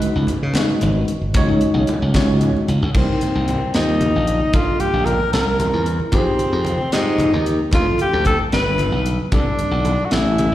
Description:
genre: electric jazz fusion.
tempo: 75 BPM (dotted quarters).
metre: 6/8.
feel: straight.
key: unclear.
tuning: A4 = 441 Hz.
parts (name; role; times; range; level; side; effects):
tine electric piano; accompaniment; 0.0-10.5 s; F3 to Db5; -23 LUFS; equal; medium stereo tremolo, analog chorus, slapback echo.
glassy slap bass; bass; 0.0-10.5 s; G1 to Db3; -20 LUFS; equal; none.
crisp fusion drum kit; drums; 0.0-10.5 s; crash cymbal, hi-hat, kick drum, snare drum; -22 LUFS; equal; none.
congas; percussion; 0.1-10.5 s; none; -26 LUFS; equal; slapback echo.
breathy alto saxophone; melody; 3.0-10.5 s; C4 to B4; -20 LUFS; left 1 dB; slapback echo, tape echo.
room: light reverb, small room ambience.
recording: live gig heard through the venue's PA, recital hall reverb.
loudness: -16 LUFS.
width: side -13 dB against mid.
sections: 0.0-2.9 A section; 2.9-10.5 B section.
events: none.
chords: 0.0 Db9sus4; 2.9 Cm7; 4.5 Gm9; 5.3 C7b9; 6.1 Fm9; 7.7 Dm9; 8.5 G7; 9.3 C69.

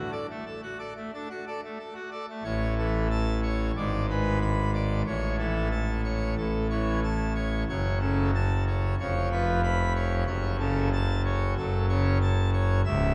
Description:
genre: classical, organ toccata.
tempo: 92 BPM.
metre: 4/4.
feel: straight.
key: unclear.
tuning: A4 = 440 Hz.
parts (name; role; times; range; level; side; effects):
pipe organ, full organ; solo; 0.0-13.1 s; C#1 to B5; -28 LUFS; equal; none.
room: wet church reverb, RT60 3.8 s.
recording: dark, warm production.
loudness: -28 LUFS.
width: mono.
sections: 0.0-2.5 A section; 2.5-13.1 B section.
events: none.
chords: 0.0 D; 2.5 A; 3.8 G#dim; 5.1 A; 7.7 F#m; 9.0 C#7/E#; 10.3 F#m.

